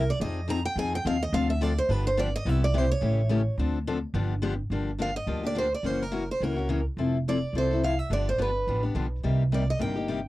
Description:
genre	acoustic string swing (jazz manouche)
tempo	212 BPM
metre	4/4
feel	swing 57% on 8ths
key	G minor from 4.7 s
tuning	A4 = 440 Hz
part	picked steel-string acoustic guitar	melody	0.0-10.3 s	A#4 to Bb5	-30 LUFS	right 2 dB	none
part	picked steel-string acoustic guitar	accompaniment	0.0-10.2 s	C3 to A4	-30 LUFS	left 4 dB	none
part	upright bass	bass	0.0-10.3 s	F1 to F2	-28 LUFS	right 1 dB	none
room	little or no reverb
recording	dry, close 1970s-style studio recording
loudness	-24 LUFS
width	side -17 dB against mid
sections	0.0-4.7 A section; 4.7-10.3 B section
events	steel-string acoustic guitar solo 0.0-4.7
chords	0.2 Fm7; 1.3 Dm7; 1.9 G7; 2.5 Cmaj7; 3.0 A7; 3.6 Dm7; 4.2 G7; 4.7 Gm7; 5.8 F#7; 7.0 Fmaj7; 8.1 G7; 9.2 Cm7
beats	| 0.21 0.49 0.77 1.05 | 1.33 1.61 1.90 2.18 | 2.46 2.74 3.02 3.31 | 3.59 3.87 4.15 4.43 | 4.71 5.00 5.28 5.56 | 5.85 6.13 6.41 6.70 | 6.98 7.26 7.54 7.83 | 8.11 8.39 8.68 8.96 | 9.24 9.52 9.81 10.09

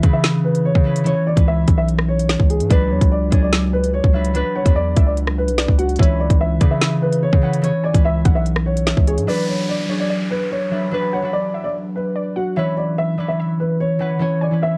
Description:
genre	hip hop, drill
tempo	146 BPM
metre	4/4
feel	half-time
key	unclear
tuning	A4 = 440 Hz
part	dark concert grand piano	melody	0.0-14.8 s	F#4 to E5	-25 LUFS	equal	plate reverb
part	concert harp	accompaniment	0.0-14.8 s	E3 to C#5	-23 LUFS	equal	plate reverb
part	distorted 808-style bass	bass	0.0-9.3 s	B1 to C#3	-23 LUFS	equal	distortion
part	drill drum kit	drums	0.0-9.3 s	hi-hat, kick drum, rim click, snare drum	-18 LUFS	equal	vintage 12-bit sampler grit
part	warbly dusty pluck	second line	2.7-14.8 s	C#5 to G#5	-34 LUFS	equal	chorus, analog delay, plate reverb
part	downlifter and swell	sound effects	9.3-14.8 s	none	-35 LUFS	equal	none
room	light reverb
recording	cassette tape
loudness	-18 LUFS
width	mono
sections	0.0-9.3 A section; 9.3-14.8 B section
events	none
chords	0.0 C#m7; 2.7 Bm/C#; 6.0 C#m7; 9.3 Bm; 12.6 C#m7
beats	0.24 0.65 | 1.06 1.47 1.88 2.29 | 2.71 3.12 3.53 3.94 | 4.35 4.76 5.17 5.58 | 5.99 6.40 6.81 7.22 | 7.64 8.05 8.46 8.87 | 9.28 9.69 10.10 10.51 | 10.92 11.34 11.75 12.16 | 12.57 12.98 13.39 13.80 | 14.21 14.62

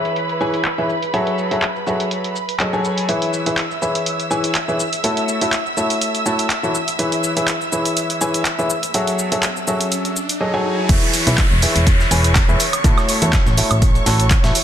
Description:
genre	piano house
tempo	123 BPM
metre	4/4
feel	swing 54% on 16ths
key	E major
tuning	A4 = 440 Hz
part	dark studio violin section	sustained chords	0.0-14.6 s	B4 to E6	-25 LUFS	right 2 dB	sidechain pumping, low-pass filter
part	clear upright piano	riff	0.0-14.5 s	E3 to A5	-20 LUFS	left 1 dB	sidechain pumping, ping-pong delay
part	punchy analog drum machine	drums	0.1-14.6 s	crash cymbal, handclaps, hi-hat, shaker, woodblock	-22 LUFS	right 1 dB	low-pass filter on hats, low-pass filter on cymbals, low-pass filter on perc, low-pass filter on snare
part	riser and downlifter	sound effects	8.7-14.6 s	none	-25 LUFS	equal	none
part	solid FM bass	bass	10.9-14.5 s	E1 to E2	-18 LUFS	equal	sidechain pumping
part	breakbeat sampler-style drum kit	drums	10.9-14.5 s	hi-hat, snare drum	-30 LUFS	right 2 dB	none
part	electronic kick drum	drums	10.9-14.4 s	none	-16 LUFS	equal	none
room	light reverb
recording	dense, heavily limited modern master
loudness	-16 LUFS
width	side -10 dB against mid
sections	0.0-10.9 A section; 10.9-14.6 B section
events	filter sweep on violin section 0.0-10.9; riser 8.7-10.9; drop 10.9-14.6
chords	0.0 E6; 1.1 F#m9; 3.1 E6; 5.0 A6; 6.7 E6; 8.9 F#m9; 10.9 E6; 12.8 A6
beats	0.16 0.65 | 1.14 1.62 2.11 2.60 | 3.09 3.58 4.06 4.55 | 5.04 5.53 6.01 6.50 | 6.99 7.48 7.97 8.45 | 8.94 9.43 9.92 10.40 | 10.89 11.38 11.87 12.36 | 12.84 13.33 13.82 14.31

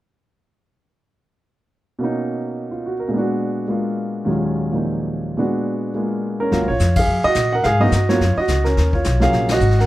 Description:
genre	jazz piano trio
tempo	213 BPM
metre	4/4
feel	swing 59% on 8ths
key	Eb minor from 6.5 s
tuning	A4 = 439 Hz
part	warm grand piano	melody	2.0-9.9 s	Eb2 to Gb5	-19 LUFS	right 1 dB	none
part	upright bass	bass	6.5-9.9 s	Ab1 to Bb2	-18 LUFS	left 1 dB	none
part	vintage brush drum kit	drums	6.5-9.9 s	brushed snare drum, hi-hat, kick drum, ride cymbal, snare drum	-26 LUFS	left 2 dB	none
room	light reverb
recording	none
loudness	-17 LUFS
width	side -16 dB against mid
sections	2.0-6.5 A section; 6.5-9.9 B section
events	band accent 6.9, 9.5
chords	2.0 Bmaj9; 3.1 Bb7b9b13; 4.3 Ebm11; 5.4 Bb7b9b13; 6.5 Ebm7; 7.6 Ab7(no3); 8.8 Ebm7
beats	| 2.01 2.29 2.57 2.85 | 3.14 3.42 3.70 3.98 | 4.26 4.55 4.83 5.11 | 5.39 5.67 5.96 6.24 | 6.52 6.80 7.08 7.36 | 7.64 7.92 8.21 8.49 | 8.77 9.05 9.33 9.61

